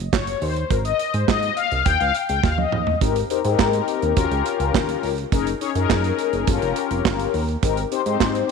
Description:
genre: early-eighties boogie funk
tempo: 104 BPM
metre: 4/4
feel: straight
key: Ab major from 3.0 s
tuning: A4 = 441 Hz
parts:
  - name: chorused synth bass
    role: bass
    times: 0.0-8.4 s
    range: F1 to Ab2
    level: -25 LUFS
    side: right 2 dB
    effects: none
  - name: mellow synth brass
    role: accompaniment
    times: 0.1-8.5 s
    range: C4 to G5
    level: -21 LUFS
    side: left 10 dB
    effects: chorus, phaser
  - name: modern studio drum kit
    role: drums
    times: 0.1-8.5 s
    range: handclaps, hi-hat, kick drum, snare drum, toms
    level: -23 LUFS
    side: right 6 dB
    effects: none
room: light reverb, small room ambience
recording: 1960s-style stereo with parts hard left and right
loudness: -19 LUFS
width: side -5 dB against mid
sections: 0.0-3.0 A section; 3.0-8.5 B section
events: analog polysynth solo 0.0-3.0; drum fill 2.4-3.0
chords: 0.0 Gb5; 0.7 Ab; 1.9 Dbadd9; 3.0 Abmaj9; 4.2 Eb7; 5.3 Gb69; 6.5 Eb7; 7.6 Abmaj9

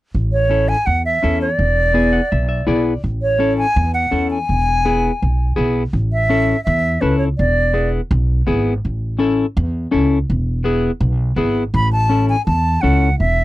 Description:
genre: latin, cumbia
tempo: 166 BPM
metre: 4/4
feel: straight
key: A major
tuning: A4 = 439 Hz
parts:
  - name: upright bass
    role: bass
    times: 0.1-13.4 s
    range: E1 to E2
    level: -18 LUFS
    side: equal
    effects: none
  - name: breathy silver concert flute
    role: melody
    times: 0.3-7.9, 11.8-13.4 s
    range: B4 to B5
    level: -18 LUFS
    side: right 1 dB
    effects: none
  - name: semi-hollow electric guitar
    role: accompaniment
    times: 0.5-13.1 s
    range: B3 to F#5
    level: -18 LUFS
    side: left 3 dB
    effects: none
room: light reverb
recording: dry, close 1970s-style studio recording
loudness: -15 LUFS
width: side -16 dB against mid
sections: 0.1-5.9 A section; 5.9-13.4 B section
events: clean electric guitar fill 2.0-3.0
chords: 0.1 A; 1.6 E7; 3.0 A; 4.5 E; 5.9 A; 7.4 E7; 8.8 A; 10.3 E; 11.7 A

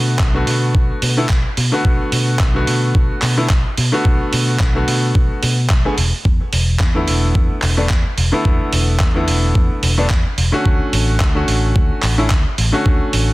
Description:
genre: nu-disco, nu disco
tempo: 109 BPM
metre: 4/4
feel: swing 55% on 16ths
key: B minor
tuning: A4 = 440 Hz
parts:
  - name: bright grand piano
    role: accompaniment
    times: 0.0-13.3 s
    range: D3 to G#4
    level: -20 LUFS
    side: equal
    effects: tape echo
  - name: fingered electric bass with an envelope filter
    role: bass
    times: 0.0-13.3 s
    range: E1 to B2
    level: -18 LUFS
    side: equal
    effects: sidechain pumping
  - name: dusty soul sampler-style drum kit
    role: drums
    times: 0.2-13.3 s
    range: handclaps, hi-hat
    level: -21 LUFS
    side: right 2 dB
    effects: overdrive, small room ambience
  - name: electronic kick drum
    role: drums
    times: 0.2-13.0 s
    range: none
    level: -16 LUFS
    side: equal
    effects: overdrive, small room ambience
room: digital ambience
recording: dense, heavily limited modern master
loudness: -13 LUFS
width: side -20 dB against mid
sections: 0.0-13.3 A section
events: none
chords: 0.0 Bm7; 6.0 E7sus4; 10.7 Dmaj7

